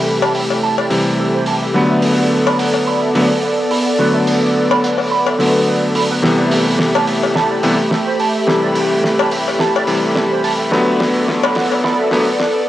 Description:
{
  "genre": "nu-disco, nu disco",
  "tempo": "107 BPM",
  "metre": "4/4",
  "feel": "swing 54% on 16ths",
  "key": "A dorian",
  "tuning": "A4 = 440 Hz",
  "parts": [
    { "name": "clear electric grand piano", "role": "accompaniment", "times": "0.0-12.2 s", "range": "C3 to B3", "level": "-17 LUFS", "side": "left 1 dB", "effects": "cassette tape, tape echo" },
    { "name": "lush unison pad", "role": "sustained chords", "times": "0.0-12.7 s", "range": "A3 to B5", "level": "-17 LUFS", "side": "equal", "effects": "chorus, cassette tape" },
    { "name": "electric guitar with an envelope filter", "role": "riff", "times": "0.2-12.7 s", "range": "A4 to B5", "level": "-22 LUFS", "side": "right 6 dB", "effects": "analog chorus, low-pass filter, cassette tape, tape echo" },
    { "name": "cowbell", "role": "percussion", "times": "0.2-11.8 s", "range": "none", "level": "-21 LUFS", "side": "left 7 dB", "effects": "none" },
    { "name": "damped 70s drum kit", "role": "drums", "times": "0.3-12.5 s", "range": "hi-hat, snare drum", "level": "-22 LUFS", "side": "right 1 dB", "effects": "cassette tape" }
  ],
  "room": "wet spring reverb, RT60 1.5 s, studio ambience",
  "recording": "home recording on cassette, high-pass filter",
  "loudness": "-13 LUFS",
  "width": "side -13 dB against mid",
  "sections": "0.0-12.7 A section",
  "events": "build-up 0.0-12.7; drum fill 6.2-12.7",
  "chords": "0.0 Am9; 1.8 Bm7; 6.2 Am9; 10.7 Bm7",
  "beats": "0.07 0.63 1.19 | 1.75 2.31 2.88 3.44 | 4.00 4.56 5.12 5.68 | 6.24 6.80 7.36 7.92 | 8.48 9.04 9.60 10.16 | 10.72 11.29 11.85 12.41"
}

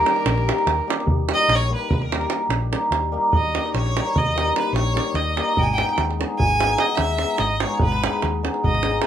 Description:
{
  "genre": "balkan folk, Balkan wedding band",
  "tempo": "294 BPM (eighths)",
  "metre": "11/8",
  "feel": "straight",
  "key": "Eb phrygian dominant",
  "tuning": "A4 = 439 Hz",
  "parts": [
    { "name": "warm fiddle", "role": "melody", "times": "0.0-0.9 s", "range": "Bb4", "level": "-30 LUFS", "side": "left 1 dB", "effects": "none" },
    { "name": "bright violin", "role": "second line", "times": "0.0-9.1 s", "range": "G4 to Ab5", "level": "-23 LUFS", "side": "equal", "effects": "none" },
    { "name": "cimbalom", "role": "accompaniment", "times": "0.0-9.1 s", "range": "G3 to Ab4", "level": "-23 LUFS", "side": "left 1 dB", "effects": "none" },
    { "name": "hollow-body short-scale fingered electric bass", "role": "bass", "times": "0.0-9.0 s", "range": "Ab1 to Eb2", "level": "-24 LUFS", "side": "equal", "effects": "none" },
    { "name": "davul", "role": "percussion", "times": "0.1-9.1 s", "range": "none", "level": "-24 LUFS", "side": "right 3 dB", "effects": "none" }
  ],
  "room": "moderate studio ambience, RT60 0.5 s",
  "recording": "minimal, uncompressed stereo recording",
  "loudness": "-18 LUFS",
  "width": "side -10 dB against mid",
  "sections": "0.0-1.1 A section; 1.1-9.1 B section",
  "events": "violin solo 1.1-9.1",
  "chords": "0.0 Eb; 5.6 Abm",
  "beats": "0.06 0.26 0.46 0.67 0.87 | 1.07 1.28 1.48 1.69 1.89 2.10 2.30 2.50 2.71 2.91 3.12 | 3.32 3.53 3.73 3.94 4.14 4.34 4.55 4.75 4.96 5.16 5.37 | 5.57 5.77 5.98 6.18 6.39 6.59 6.79 7.00 7.20 7.40 7.61 | 7.81 8.01 8.21 8.42 8.62 8.82 9.03"
}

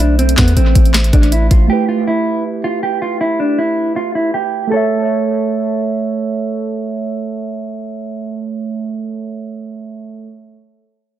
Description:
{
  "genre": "hip hop, trap",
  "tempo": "159 BPM",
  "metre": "4/4",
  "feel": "half-time",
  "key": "unclear",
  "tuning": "A4 = 440 Hz",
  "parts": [
    { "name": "mellow electric guitar", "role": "melody", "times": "0.0-5.8 s", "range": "B3 to A4", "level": "-18 LUFS", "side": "right 1 dB", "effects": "low-pass filter, analog delay" },
    { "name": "muted felt-like synth keys", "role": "accompaniment", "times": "0.0-10.3 s", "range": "A3 to E5", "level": "-19 LUFS", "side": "right 4 dB", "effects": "chorus, low-pass filter, analog delay" },
    { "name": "warm 808-style bass", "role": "bass", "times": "0.0-1.7 s", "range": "A1 to E2", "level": "-12 LUFS", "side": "equal", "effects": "none" },
    { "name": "trap drum kit", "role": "drums", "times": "0.0-1.6 s", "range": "handclaps, hi-hat, kick drum, snare drum", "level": "-13 LUFS", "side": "equal", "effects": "none" }
  ],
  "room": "light reverb, digital ambience",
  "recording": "echo-heavy mix",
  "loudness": "-14 LUFS",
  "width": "side -12 dB against mid",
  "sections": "0.0-4.7 A section; 4.7-7.7 B section",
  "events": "none",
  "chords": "0.0 Am; 1.7 Em/A; 4.7 A",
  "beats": "| 0.19 0.56 0.94 1.32 | 1.70 2.08 2.45 2.83 | 3.21 3.58 3.96 4.34 | 4.72 5.09 5.47 5.85 | 6.23 6.60 6.98 7.36"
}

